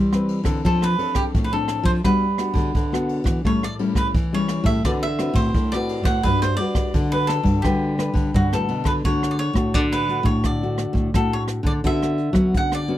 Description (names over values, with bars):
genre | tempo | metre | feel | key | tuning
samba and choro | 86 BPM | 4/4 | straight | G major, D major from 9.0 s | A4 = 441 Hz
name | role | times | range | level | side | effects
cavaquinho | melody | 0.0-13.0 s | F#4 to F#5 | -26 LUFS | right 2 dB | none
nylon-string guitar | accompaniment | 0.0-13.0 s | A2 to B4 | -26 LUFS | left 3 dB | none
nylon-string guitar | bass | 0.0-13.0 s | G2 to A3 | -22 LUFS | equal | none
jazz brush drum kit | drums | 0.1-13.0 s | hi-hat, kick drum, ride cymbal, rim click | -24 LUFS | equal | none
room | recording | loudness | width
little or no reverb | dry, close 1970s-style studio recording | -18 LUFS | side -13 dB against mid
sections
0.0-9.0 A section; 9.0-13.0 B section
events
none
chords
0.0 Cmaj7/E; 0.6 Dm7/F; 2.0 Gmaj7; 3.4 A7; 4.8 D6; 6.2 Gmaj7; 9.0 D; 11.8 Bmadd9/D